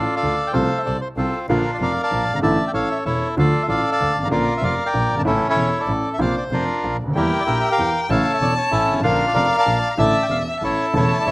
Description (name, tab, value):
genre	tango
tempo	191 BPM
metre	3/4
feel	rubato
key	unclear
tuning	A4 = 440 Hz
part	bandoneon	melody	0.0-11.3 s	C4 to Bb5	-20 LUFS	equal	slapback echo
part	clear concert grand piano	accompaniment	0.0-11.3 s	E1 to G4	-22 LUFS	equal	none
part	clear double bass	bass	0.0-11.3 s	E1 to E2	-27 LUFS	right 1 dB	none
part	warm violin	second line	7.2-11.3 s	E5 to A5	-23 LUFS	left 2 dB	slapback echo
room	little or no reverb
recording	recorded outdoors, with no room sound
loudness	-17 LUFS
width	side -23 dB against mid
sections	0.0-11.3 A section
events	none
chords	0.0 Dm; 0.5 F/C; 1.5 Bb; 2.4 Asus4; 2.7 A; 3.4 Dm; 4.3 Bb; 5.2 A; 6.2 Bbadd9; 7.2 Edim; 8.1 A; 9.0 Bb; 10.0 Asus4; 10.6 A